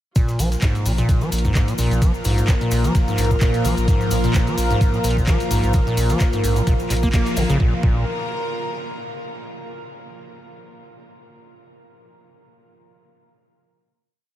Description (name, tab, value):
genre	acid house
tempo	129 BPM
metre	4/4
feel	swing 55% on 16ths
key	unclear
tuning	A4 = 440 Hz
part	warm analog pad	sustained chords	0.4-7.8 s	F3 to F5	-26 LUFS	equal	chorus, sidechain pumping
part	acid bass, square	riff	0.2-8.0 s	Ab2 to Bb3	-23 LUFS	equal	tube saturation, sidechain pumping, analog delay
part	dusty soul sampler-style drum kit	drums	0.2-7.5 s	ride cymbal, snare drum	-40 LUFS	right 2 dB	none
part	electronic kick drum	drums	0.2-7.9 s	none	-19 LUFS	equal	none
part	punchy analog drum machine	drums	0.2-7.6 s	handclaps, hi-hat	-31 LUFS	equal	none
part	cabasa	percussion	0.2-7.6 s	none	-35 LUFS	left 4 dB	none
part	rich chamber string section	texture	0.2-9.4 s	F4 to Bb5	-30 LUFS	left 2 dB	sidechain pumping
part	round analog bass	bass	0.4-8.0 s	Bb1	-22 LUFS	equal	sidechain pumping
room	light reverb, digital ambience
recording	none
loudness	-17 LUFS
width	side -13 dB against mid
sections	0.2-7.6 drop; 7.6-9.5 final chord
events	drop 0.2-7.6; band accent 7.1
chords	0.2 Bb5